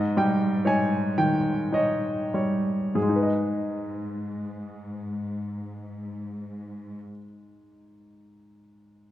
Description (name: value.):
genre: classical, romantic movement for piano and orchestra.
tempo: 46-66 BPM.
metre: 3/4.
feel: rubato.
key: G# minor.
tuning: A4 = 439 Hz.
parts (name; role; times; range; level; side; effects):
clear grand piano; melody; 0.0-9.1 s; G#2 to G#5; -24 LUFS; equal; none.
warm symphonic cello section; bass; 0.0-7.0 s; G#2; -34 LUFS; left 1 dB; none.
room: moderate scoring stage reverb, RT60 1.9 s.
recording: none.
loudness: -24 LUFS.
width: side -13 dB against mid.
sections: 0.0-3.0 A section; 3.0-9.1 B section.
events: slowing down 0.0-3.0.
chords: 0.0 D#7/G#.